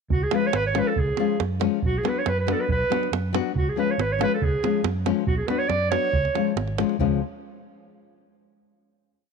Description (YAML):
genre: balkan folk, Balkan wedding band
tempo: 140 BPM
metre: 2/4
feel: straight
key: C# phrygian dominant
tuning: A4 = 440 Hz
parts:
  - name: warm clarinet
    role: melody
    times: 0.1-6.5 s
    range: F#4 to D5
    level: -26 LUFS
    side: right 4 dB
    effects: none
  - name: fingered electric bass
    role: bass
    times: 0.1-7.2 s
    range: G#1 to F#2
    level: -27 LUFS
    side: right 1 dB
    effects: none
  - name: davul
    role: percussion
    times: 0.1-7.2 s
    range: none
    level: -28 LUFS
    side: right 6 dB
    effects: none
  - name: nylon-string guitar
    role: accompaniment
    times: 0.3-7.2 s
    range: E#3 to F#4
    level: -26 LUFS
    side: left 14 dB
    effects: none
room: light reverb, small room ambience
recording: 1960s-style stereo with parts hard left and right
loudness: -21 LUFS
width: side -5 dB against mid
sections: 0.1-7.0 A section; 7.0-7.8 final chord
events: none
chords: 0.1 C#; 1.8 Bm; 3.6 C#; 5.3 Bm; 6.1 C#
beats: | 0.10 0.54 | 0.97 1.40 | 1.83 2.26 | 2.69 3.12 | 3.55 3.98 | 4.41 4.84 | 5.27 5.70 | 6.13 6.56 | 6.99